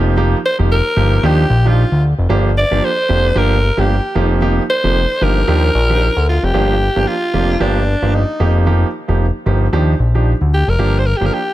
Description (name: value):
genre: afrobeats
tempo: 113 BPM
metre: 4/4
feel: swing 58% on 16ths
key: G minor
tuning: A4 = 440 Hz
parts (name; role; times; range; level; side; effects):
- warm baby grand piano; accompaniment; 0.0-11.4 s; F3 to G4; -19 LUFS; right 4 dB; none
- fat analog bass; bass; 0.0-11.3 s; F1 to Eb2; -14 LUFS; equal; none
- raspy alto saxophone; melody; 0.5-11.5 s; D4 to D5; -18 LUFS; equal; tape echo
room: little or no reverb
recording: none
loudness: -12 LUFS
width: side -15 dB against mid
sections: 0.0-6.5 A section; 6.5-11.5 B section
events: none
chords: 0.0 F9sus4; 1.2 Ebmaj9; 2.3 Gm7; 4.2 F9sus4; 5.5 Ebmaj9; 6.5 Gm7; 8.4 F9sus4; 9.7 Ebmaj9; 10.8 Gm7